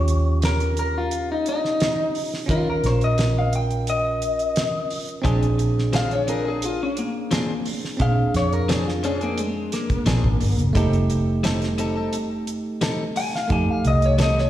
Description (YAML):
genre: straight-eighth soul blues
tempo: 87 BPM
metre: 4/4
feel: straight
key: Bb mixolydian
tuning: A4 = 444 Hz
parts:
  - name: electric guitar through a small old amp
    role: melody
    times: 0.0-14.5 s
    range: Ab3 to Ab5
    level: -24 LUFS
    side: left 3 dB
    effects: slapback echo
  - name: bell-like tine electric piano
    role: accompaniment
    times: 0.0-14.5 s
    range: A3 to Bb4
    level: -27 LUFS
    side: right 3 dB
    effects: slapback echo
  - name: vintage muted fingered electric bass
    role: bass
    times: 0.0-14.5 s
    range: F1 to Eb3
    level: -22 LUFS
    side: equal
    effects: none
  - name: damped 70s drum kit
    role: drums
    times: 0.1-14.5 s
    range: hi-hat, kick drum, snare drum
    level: -26 LUFS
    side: right 1 dB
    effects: slapback echo
  - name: direct-recorded clean electric guitar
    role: stabs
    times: 5.2-14.4 s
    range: F3 to A4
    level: -29 LUFS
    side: left 4 dB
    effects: slapback echo, digital delay
room: little or no reverb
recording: live gig heard through the venue's PA, recital hall reverb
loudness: -20 LUFS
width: side -12 dB against mid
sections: 0.0-14.5 A section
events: clean electric guitar solo 0.0-14.5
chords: 0.0 Eb9; 5.2 Bb9; 10.8 F9